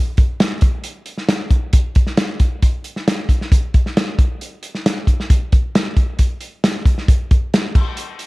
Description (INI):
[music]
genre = soul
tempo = 135 BPM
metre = 4/4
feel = straight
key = none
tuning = none
[part]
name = warm soul drum kit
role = drums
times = 0.2-8.3 s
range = crash cymbal, hi-hat, kick drum, snare drum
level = -14 LUFS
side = equal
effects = none
[sound]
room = light reverb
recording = dark, warm production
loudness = -15 LUFS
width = side -23 dB against mid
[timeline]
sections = 0.0-8.3 A section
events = none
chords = none